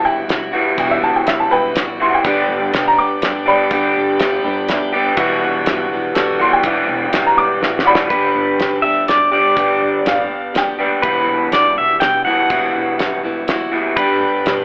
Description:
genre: folk rock and heartland rock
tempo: 123 BPM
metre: 3/4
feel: straight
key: G major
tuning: A4 = 441 Hz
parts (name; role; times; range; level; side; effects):
- bright upright piano; second line; 0.0-10.8 s; B4 to D6; -16 LUFS; equal; none
- picked plugged-in steel-string acoustic guitar; accompaniment; 0.0-14.6 s; E2 to G4; -22 LUFS; equal; none
- tonewheel organ; sustained chords; 0.0-8.1, 14.0-14.6 s; G3 to G4; -31 LUFS; equal; none
- electric guitar through a small old amp; riff; 0.0-14.6 s; E2 to G4; -18 LUFS; equal; wide subtle chorus
- upright bass; bass; 0.0-14.6 s; E1 to G2; -33 LUFS; equal; none
- cloth-damped thuddy drum kit; drums; 0.3-14.6 s; hi-hat, kick drum, snare drum; -20 LUFS; equal; none
- warm concert grand piano; accompaniment; 2.2-8.0 s; E4 to B5; -25 LUFS; equal; none
- pedal steel guitar; melody; 8.1-14.6 s; B4 to G5; -15 LUFS; equal; plate reverb
room: moderate studio reverb, RT60 0.5 s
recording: telephone sound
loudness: -13 LUFS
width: side -33 dB against mid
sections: 0.0-8.1 A section; 8.1-14.6 B section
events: upright piano solo 0.0-8.1; grand piano fill 4.2-5.2; drum fill 7.6-8.1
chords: 0.0 Emadd9; 2.2 G; 5.2 Emadd9; 8.1 G; 11.0 Emadd9; 14.0 G

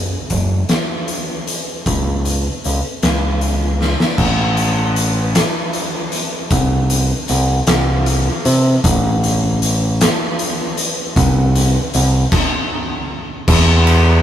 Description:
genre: quiet-loud alternative rock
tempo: 52 BPM (dotted quarters)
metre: 6/8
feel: straight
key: unclear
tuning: A4 = 441 Hz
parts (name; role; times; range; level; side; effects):
- growling picked electric bass; bass; 0.0-14.2 s; F#1 to C3; -15 LUFS; equal; overdrive
- oversized low-tuned drum kit; drums; 0.3-14.0 s; crash cymbal, hi-hat, kick drum, ride cymbal, snare drum; -17 LUFS; equal; none
room: light reverb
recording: rough rehearsal-room recording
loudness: -14 LUFS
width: side -10 dB against mid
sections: 0.0-4.2 A section; 4.2-13.5 B section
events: drum fill 3.8-4.2; stop 12.3-13.5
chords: none

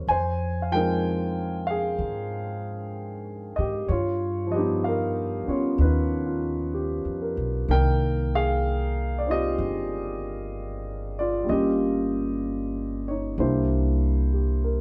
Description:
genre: jazz ballad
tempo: 63 BPM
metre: 4/4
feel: swing 68% on 8ths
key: C minor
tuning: A4 = 439 Hz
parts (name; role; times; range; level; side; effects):
- warm grand piano; accompaniment; 0.0-14.8 s; Eb3 to Ab5; -28 LUFS; equal; none
- upright bass; bass; 0.0-14.8 s; G1 to Ab2; -30 LUFS; equal; none
room: moderate studio reverb, RT60 0.7 s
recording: band playing live in one room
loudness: -26 LUFS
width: mono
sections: 0.0-14.8 A section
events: none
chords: 0.1 Fm9; 3.9 G7alt; 7.7 Cm7; 11.5 Gm7b5; 13.4 C7

